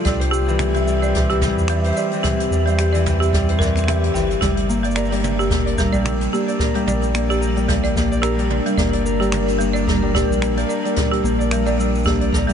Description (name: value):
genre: folktronica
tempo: 110 BPM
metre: 4/4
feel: swing 56% on 16ths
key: G dorian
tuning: A4 = 439 Hz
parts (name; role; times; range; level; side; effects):
- Celtic harp; arpeggios; 0.0-12.5 s; E3 to D5; -23 LUFS; left 3 dB; ping-pong delay
- jazz brush drum kit; drums; 0.0-12.5 s; finger snaps, hi-hat, shaker, toms; -29 LUFS; right 1 dB; none
- folk marimba with hard mallets; second line; 0.1-12.5 s; G3 to G5; -24 LUFS; right 3 dB; analog delay
- warbly tape-like pad; sustained chords; 0.1-12.5 s; G3 to E5; -25 LUFS; left 1 dB; chorus, built-in reverb
- warm sub bass; bass; 0.1-12.5 s; G1 to E2; -21 LUFS; equal; none
- kick drum; drums; 0.1-12.4 s; none; -23 LUFS; equal; none
room: moderate huge ambient reverb, RT60 8.3 s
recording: dreamy mix soaked in reverb, nothing above 10.4 kHz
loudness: -16 LUFS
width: side -8 dB against mid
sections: 0.0-12.5 A section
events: none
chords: 0.1 C; 4.4 Gm